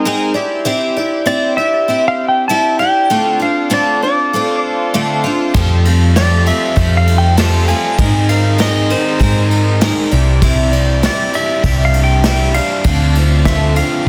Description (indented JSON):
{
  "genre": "folk rock and heartland rock",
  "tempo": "98 BPM",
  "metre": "4/4",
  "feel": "straight",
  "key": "unclear",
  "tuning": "A4 = 435 Hz",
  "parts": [
    { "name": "picked twelve-string acoustic guitar", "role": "accompaniment", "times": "0.0-14.1 s", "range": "F2 to D5", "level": "-20 LUFS", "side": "equal", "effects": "none" },
    { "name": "hand-pumped harmonium", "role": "sustained chords", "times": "0.0-14.1 s", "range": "E3 to C5", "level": "-28 LUFS", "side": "equal", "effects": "none" },
    { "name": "clean lap steel guitar", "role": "melody", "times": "1.3-14.1 s", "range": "C5 to A5", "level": "-19 LUFS", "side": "equal", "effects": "digital delay" },
    { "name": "hollow-body short-scale picked electric bass", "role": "bass", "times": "5.5-13.8 s", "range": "C2 to Ab2", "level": "-15 LUFS", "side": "equal", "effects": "none" },
    { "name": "soft brush drum kit", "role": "drums", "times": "5.5-14.1 s", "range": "crash cymbal, kick drum, ride cymbal, snare drum", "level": "-20 LUFS", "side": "equal", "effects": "none" },
    { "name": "overdriven electric guitar", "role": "riff", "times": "5.6-14.1 s", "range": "C3 to Bb4", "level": "-25 LUFS", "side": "equal", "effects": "none" }
  ],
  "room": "light reverb, small room reverb",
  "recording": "dense, heavily limited modern master",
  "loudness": "-14 LUFS",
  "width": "mono",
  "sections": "0.0-14.1 A section",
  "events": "none",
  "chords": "0.4 Cadd9; 3.1 Dm7; 5.5 Fadd9; 8.0 Abadd9; 10.1 Cadd9; 12.9 Dm7"
}